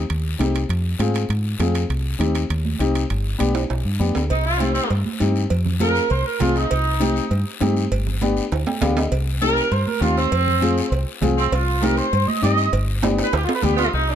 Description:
latin, cumbia; 199 BPM; 4/4; straight; C harmonic minor; A4 = 445 Hz
deep dub fingered electric bass; bass; 0.0-14.2 s; G1 to Ab2; -21 LUFS; equal
guiro; percussion; 0.1-14.2 s; -34 LUFS; left 7 dB
timbales and cowbell; percussion; 0.1-13.9 s; -28 LUFS; right 7 dB
dark upright piano; accompaniment; 0.4-13.8 s; B3 to G5; -25 LUFS; left 4 dB
congas; percussion; 0.4-13.8 s; -28 LUFS; right 5 dB
warm saxophone section; melody; 4.3-14.2 s; B3 to Eb5; -22 LUFS; right 2 dB; slapback echo
little or no reverb; close, detailed microphones; -18 LUFS; side -10 dB against mid
0.0-4.3 A section; 4.3-13.9 B section
drum fill 3.6-4.3, 8.5-9.1, 13.0-13.9; saxophone section solo 4.3-13.9; upright piano fill 8.5-9.1
0.0 Cm; 0.7 Fm; 1.9 Cm; 3.1 G; 4.3 Cm; 5.5 Fm; 6.7 Cm; 7.9 G; 9.1 Cm; 10.3 Fm; 11.5 Cm; 12.7 G

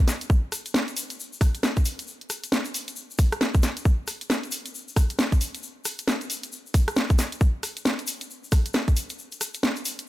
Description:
UK garage; 135 BPM; 4/4; swing 61% on 16ths
garage drum kit; drums; 0.1-10.1 s; hi-hat, rim click, snare drum; -26 LUFS; equal; studio reverb
egg shaker; percussion; 0.1-10.1 s; -34 LUFS; left 4 dB
electronic kick drum; drums; 0.3-8.9 s; -20 LUFS; equal; studio reverb
little or no reverb; -23 LUFS; side -16 dB against mid
0.0-10.1 A section

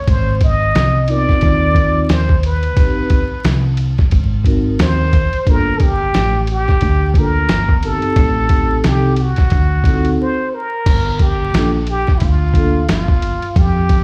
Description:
hip hop, jazz-hop; 89 BPM; 4/4; swing 57% on 16ths; G minor; A4 = 440 Hz
trumpet with plunger mute; melody; 0.0-14.0 s; E4 to Eb5; -22 LUFS; equal
woody fretless electric bass; bass; 0.1-14.0 s; G1 to F2; -19 LUFS; equal
lo-fi sampler-style drum kit; drums; 0.1-14.0 s; crash cymbal, hi-hat, kick drum, ride cymbal, snare drum; -17 LUFS; equal; overdrive
vibraphone with soft mallets; accompaniment; 1.1-12.8 s; Bb3 to B4; -22 LUFS; equal
light reverb; played on a big sound system in a bare room, stone room reverb, vinyl crackle; -15 LUFS; mono
0.0-10.9 A section; 10.9-14.0 A section
break 10.2-10.9
0.1 Ab69; 2.8 Am7b5; 4.1 Ab9; 5.5 Gm9; 8.2 Am7b5; 9.5 D7b9; 10.9 Gm9

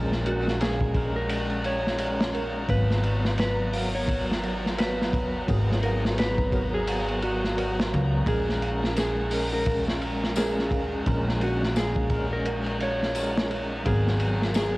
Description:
trip hop; 86 BPM; 4/4; swing 59% on 16ths; Bb phrygian; A4 = 439 Hz
bell-like tine electric piano; accompaniment; 0.0-14.8 s; Gb3 to Cb5; -32 LUFS; equal; tremolo, vintage 12-bit sampler grit, cassette tape, tape echo
rich symphonic string section; sustained chords; 0.0-14.8 s; Gb3 to Bb5; -36 LUFS; left 1 dB; cassette tape
dark detuned synth bell; arpeggios; 0.0-14.8 s; Bb4 to Bb5; -38 LUFS; right 6 dB; chorus, phaser, cassette tape, tape echo
upright bass; bass; 0.0-14.8 s; Ab1 to Db2; -28 LUFS; equal
crunchy breakbeat drum kit; drums; 0.1-14.8 s; hi-hat, kick drum, ride cymbal, snare drum; -28 LUFS; equal; cassette tape
mellow electric guitar; melody; 0.3-14.8 s; Gb4 to Db5; -30 LUFS; equal; cassette tape, tape echo
tambourine; percussion; 9.0-14.7 s; -41 LUFS; left 9 dB
light reverb; home recording on cassette; -23 LUFS; side -20 dB against mid
0.0-14.8 A section
0.0 Bbm7; 2.7 Abm9; 8.3 Bbm7; 13.9 Abm9

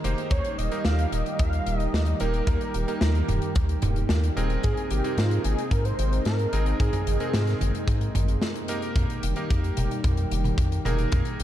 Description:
synthwave; 111 BPM; 4/4; straight; A4 = 441 Hz
lush unison pad; sustained chords; 0.0-11.4 s; C3 to Bb4; -32 LUFS; right 1 dB; chorus, sidechain pumping
clear electric grand piano; stabs; 0.0-11.4 s; Bb3 to C5; -34 LUFS; right 2 dB; ping-pong delay
round analog bass; bass; 0.0-11.4 s; Eb1 to Ab2; -25 LUFS; equal; sidechain pumping
big rock drum kit; drums; 0.0-11.4 s; hi-hat, snare drum, toms; -31 LUFS; equal
wide unison lead; melody; 0.3-8.4 s; F4 to F5; -32 LUFS; right 1 dB; ping-pong delay
kick drum; drums; 0.3-11.2 s; -27 LUFS; equal
light reverb, studio ambience; dark, warm production; -22 LUFS; side -12 dB against mid
0.0-9.0 A section; 9.0-11.4 B section
break 8.4-9.0; drum fill 9.0-11.4
0.3 Eb; 4.6 Abadd9; 9.0 Eb/F

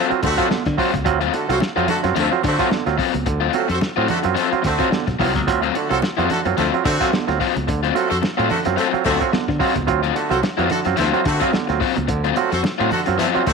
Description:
funk; 109 BPM; 4/4; swing 56% on 16ths; D mixolydian; A4 = 442 Hz
clear horn section; second line; 0.0-13.5 s; A3 to C5; -24 LUFS; left 1 dB; slapback echo
crunchy overdriven guitar; accompaniment; 0.0-13.5 s; F#3 to E#4; -22 LUFS; left 13 dB
mellow clav; stabs; 0.1-13.5 s; D3 to E#4; -22 LUFS; right 11 dB
modern bright fingered electric bass; bass; 0.1-13.5 s; B1 to D3; -24 LUFS; left 1 dB
warm soul drum kit; drums; 0.1-13.5 s; hi-hat, kick drum, snare drum; -26 LUFS; left 1 dB
congas; percussion; 0.2-13.5 s; -30 LUFS; right 10 dB
moderate echo chamber reverb, RT60 1.7 s, small room ambience; 1960s-style stereo with parts hard left and right; -17 LUFS; side -4 dB against mid
0.0-13.5 A section
0.0 D7#9

